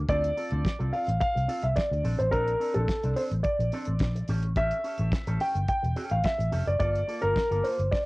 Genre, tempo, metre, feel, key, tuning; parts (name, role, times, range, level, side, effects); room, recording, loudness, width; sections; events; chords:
disco; 107 BPM; 4/4; straight; D minor; A4 = 440 Hz
vintage muted fingered electric bass; bass; 0.0-7.9 s; E1 to D2; -28 LUFS; equal
dark concert grand piano; melody; 0.1-8.1 s; A4 to G5; -28 LUFS; equal; cassette tape
electric guitar with an envelope filter; accompaniment; 0.1-7.8 s; Bb3 to A4; -38 LUFS; right 2 dB; warbly pitch drift, cassette tape
damped 70s drum kit; drums; 0.1-8.1 s; hi-hat, kick drum, snare drum; -31 LUFS; equal; cassette tape
small room reverb; home recording on cassette; -25 LUFS; side -22 dB against mid
0.0-8.1 A section
0.1 Dm7; 2.0 Bbmaj9; 4.3 A7; 6.8 Gm9